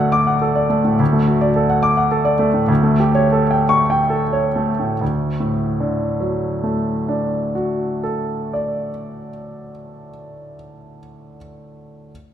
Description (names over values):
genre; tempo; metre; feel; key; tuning
classical, romantic character piece for solo piano; 63-108 BPM; 3/4; rubato; D major; A4 = 440 Hz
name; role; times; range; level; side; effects
clear baby grand piano; solo; 0.0-12.1 s; D2 to D6; -17 LUFS; equal; none
room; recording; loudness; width
wet recital hall reverb, RT60 1.4 s; minimal, uncompressed stereo recording; -16 LUFS; side -10 dB against mid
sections
1.0-5.0 A section; 5.0-9.9 B section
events
slowing down 0.1-5.0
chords
0.0 D; 2.7 A7/D; 5.0 D